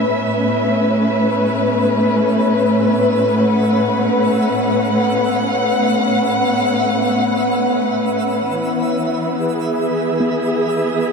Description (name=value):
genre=ambient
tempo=free time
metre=none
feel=none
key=unclear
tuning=A4 = 440 Hz
part: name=dark studio string section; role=sustained chords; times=0.0-11.1 s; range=A2 to F#5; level=-16 LUFS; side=left 1 dB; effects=shimmer reverb
part: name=organ-like drone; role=drone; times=0.0-11.1 s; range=B3 to B4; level=-22 LUFS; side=equal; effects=ensemble chorus, built-in reverb
part: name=twinkling granular texture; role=texture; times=0.0-11.1 s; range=E5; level=-30 LUFS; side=right 2 dB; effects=built-in reverb, shimmer reverb
part: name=soft round pluck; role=arpeggios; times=10.2-11.1 s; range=B3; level=-24 LUFS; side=equal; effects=chorus, dub echo, shimmer reverb
room=wet spring reverb, RT60 2.4 s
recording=echo-heavy mix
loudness=-14 LUFS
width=side -5 dB against mid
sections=0.0-11.1 A section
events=fade-in on synth texture 0.0-11.1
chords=0.0 Aadd9; 8.5 E